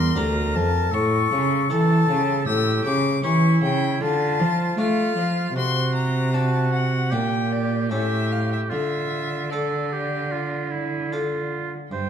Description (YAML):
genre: classical, baroque-style sonata movement with continuo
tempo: 77 BPM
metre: 4/4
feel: straight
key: D minor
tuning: A4 = 437 Hz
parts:
  - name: rich violin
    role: melody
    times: 0.0-12.1 s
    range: D5 to E6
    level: -27 LUFS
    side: left 9 dB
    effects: none
  - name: warm oboe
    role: second line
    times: 0.0-12.1 s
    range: E4 to C5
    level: -28 LUFS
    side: right 6 dB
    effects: none
  - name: harpsichord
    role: accompaniment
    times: 0.0-12.1 s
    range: D2 to D5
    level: -29 LUFS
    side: left 4 dB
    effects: none
  - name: rich cello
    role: bass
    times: 0.0-12.1 s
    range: D2 to A3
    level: -23 LUFS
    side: right 2 dB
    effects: none
room: moderate recital hall reverb, RT60 1.6 s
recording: dark, warm production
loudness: -20 LUFS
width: side -8 dB against mid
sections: 0.0-11.9 A section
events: none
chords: 0.0 Gm; 0.9 A; 2.5 A7; 4.0 Dm; 5.6 D7/C; 7.1 Gm/Bb; 7.9 A7; 8.7 Dm